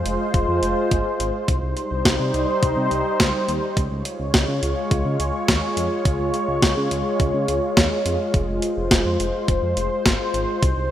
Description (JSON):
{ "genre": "synth-pop", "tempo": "105 BPM", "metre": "4/4", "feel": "straight", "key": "F minor", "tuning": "A4 = 441 Hz", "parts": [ { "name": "lush unison pad", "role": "sustained chords", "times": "0.0-10.9 s", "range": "G3 to Db5", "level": "-22 LUFS", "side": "equal", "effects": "chorus" }, { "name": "smooth synth bass", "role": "bass", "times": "0.0-10.9 s", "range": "F1 to Db3", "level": "-26 LUFS", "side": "equal", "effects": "none" }, { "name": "clean 12-bit digital drum machine", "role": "drums", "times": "0.1-10.8 s", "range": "hi-hat, kick drum, snare drum", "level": "-20 LUFS", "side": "equal", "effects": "overdrive" } ], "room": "wet plate reverb, RT60 2.5 s", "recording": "rough home demo mix", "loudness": "-19 LUFS", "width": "side -11 dB against mid", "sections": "0.0-10.9 A section", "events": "none", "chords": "0.0 Fm; 1.5 Cm; 3.8 Db; 8.3 Fm", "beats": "0.34 0.91 | 1.48 2.06 2.63 3.20 | 3.77 4.34 4.91 5.48 | 6.05 6.63 7.20 7.77 | 8.34 8.91 9.48 10.05 | 10.63" }